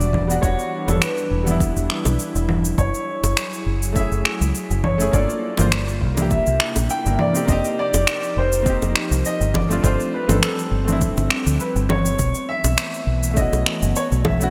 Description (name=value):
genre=sunset chillout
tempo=102 BPM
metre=4/4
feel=swing 55% on 16ths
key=E dorian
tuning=A4 = 438 Hz
part: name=dark baby grand piano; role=melody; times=0.0-14.5 s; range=A4 to G5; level=-28 LUFS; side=equal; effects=lush chorus, delay
part: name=clear concert grand piano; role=accompaniment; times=0.0-14.5 s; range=G3 to C5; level=-29 LUFS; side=equal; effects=none
part: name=airy breathy pad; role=sustained chords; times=0.0-14.5 s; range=C3 to Bb4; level=-31 LUFS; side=equal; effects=chorus
part: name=deep dub fingered electric bass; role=bass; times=0.0-14.5 s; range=E1 to D2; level=-24 LUFS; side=equal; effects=none
part: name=electronic cabasa, congas and finger snaps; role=drums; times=0.0-14.5 s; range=none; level=-26 LUFS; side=equal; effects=overdrive
part: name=electronic kick drum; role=drums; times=0.1-14.4 s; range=none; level=-25 LUFS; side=equal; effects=overdrive
part: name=bongos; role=percussion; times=0.9-14.4 s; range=none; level=-30 LUFS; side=equal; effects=none
room=moderate lush hall reverb, RT60 2.7 s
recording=bright 1980s-style digital production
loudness=-20 LUFS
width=mono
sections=0.0-7.5 A section; 7.5-14.5 B section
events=none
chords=0.0 Em9; 2.8 F#m9; 5.1 Gm9; 6.3 C9; 7.5 F9sus4; 9.5 G9sus4; 12.2 B9sus4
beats=| 0.43 1.02 1.60 2.19 | 2.78 3.37 3.96 4.55 | 5.13 5.72 6.31 6.90 | 7.49 8.07 8.66 9.25 | 9.84 10.43 11.02 11.61 | 12.19 12.78 13.37 13.96